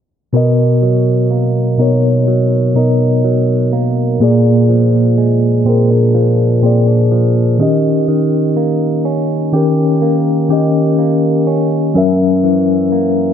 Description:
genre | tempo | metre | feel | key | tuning
contemporary R&B | 62 BPM | 4/4 | straight | B major | A4 = 441 Hz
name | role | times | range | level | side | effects
mellow tine electric piano | accompaniment | 0.3-13.3 s | A#2 to E5 | -11 LUFS | left 2 dB | medium stereo tremolo
direct-recorded clean electric guitar | arpeggios | 0.3-13.3 s | F#2 to G4 | -19 LUFS | right 9 dB | ping-pong delay
room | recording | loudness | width
moderate plate reverb, RT60 3.5 s | low-pass filter | -11 LUFS | side -8 dB against mid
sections
0.3-13.3 A section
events
filter sweep 0.3-13.3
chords
0.3 Bmaj7; 4.2 A#7; 7.6 D#7; 12.0 F#7

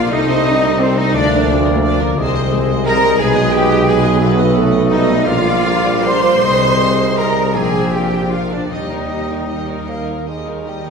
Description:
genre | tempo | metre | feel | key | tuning
classical | 49-61 BPM (dotted quarters) | 6/8 | rubato | Eb major | A4 = 440 Hz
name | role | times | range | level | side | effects
rich studio violin section | melody | 0.0-10.9 s | A4 to F5 | -27 LUFS | left 6 dB | none
clear clarinet | second line | 0.0-9.9 s | C4 to C5 | -26 LUFS | left 1 dB | none
clear oboe | second line | 0.0-10.7 s | C5 to D#5 | -27 LUFS | left 1 dB | none
large flute ensemble | second line | 0.0-9.9 s | C5 to C6 | -26 LUFS | left 1 dB | none
rich symphonic violin section | second line | 0.0-9.9 s | C5 to C6 | -27 LUFS | left 3 dB | none
clear symphonic viola section | accompaniment | 0.0-10.9 s | D3 to C5 | -27 LUFS | right 1 dB | none
warm bassoon | accompaniment | 0.0-10.9 s | G3 to C4 | -24 LUFS | right 3 dB | none
mellow French horn section | sustained chords | 0.0-10.5 s | Eb3 to B3 | -22 LUFS | left 3 dB | none
concert harp | arpeggios | 0.0-10.9 s | Bb2 to Eb5 | -26 LUFS | left 9 dB | none
clear trumpet section | stabs | 0.0-9.9 s | C5 to C6 | -23 LUFS | equal | none
warm symphonic cello section | bass | 0.0-9.8 s | C4 to C5 | -19 LUFS | right 3 dB | none
warm symphonic double bass section | bass | 0.0-10.8 s | Bb1 to Eb2 | -22 LUFS | right 2 dB | none
warm tuba | bass | 0.0-10.8 s | Bb1 to Eb2 | -19 LUFS | right 2 dB | none
room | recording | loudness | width
wet recital hall reverb, RT60 1.7 s | recorded in a church or concert hall | -12 LUFS | side -5 dB against mid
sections
0.0-10.9 A section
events
none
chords
0.1 Adim/C; 1.1 Bb/D; 2.2 Ab/C; 3.2 Abm/Cb; 4.2 B7; 5.3 Bb; 6.4 Ab/C; 7.5 Bb9; 8.7 Eb

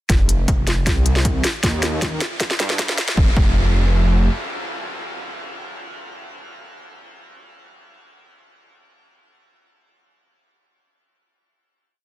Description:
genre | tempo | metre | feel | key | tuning
future bass | 156 BPM | 4/4 | half-time | unclear | A4 = 440 Hz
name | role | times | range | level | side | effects
wide detuned saw bass | bass | 0.1-4.3 s | F1 to G2 | -18 LUFS | equal | chorus, sidechain pumping
electronic kick drum | drums | 0.1-3.5 s | none | -19 LUFS | equal | overdrive
trap drum kit | drums | 0.1-3.2 s | hi-hat, snare drum | -24 LUFS | equal | none
room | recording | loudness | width
light reverb | dense, heavily limited modern master, high-pass filter | -17 LUFS | side -16 dB against mid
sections
0.1-3.2 build; 3.2-6.3 final note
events
build-up 0.1-3.2; drum fill 0.1-3.2; filter sweep 0.1-3.2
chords
none

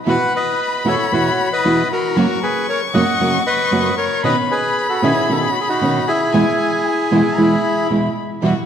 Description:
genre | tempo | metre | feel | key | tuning
tango | 115 BPM | 4/4 | rubato | E major | A4 = 440 Hz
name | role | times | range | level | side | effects
bandoneon | melody | 0.1-7.9 s | D#4 to F#5 | -18 LUFS | equal | none
warm violin | second line | 0.1-8.2 s | G#5 to C#6 | -23 LUFS | left 4 dB | none
nylon-string guitar | accompaniment | 0.1-8.5 s | E2 to F#4 | -19 LUFS | right 2 dB | none
rich chamber string section | stabs | 0.1-8.7 s | G3 to F#4 | -25 LUFS | equal | none
room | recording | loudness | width
wet scoring stage reverb, RT60 1.9 s | dark, warm production | -14 LUFS | side -8 dB against mid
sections
0.0-8.4 A section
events
none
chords
0.1 Esus2; 2.2 F#; 4.2 Badd9; 6.3 E

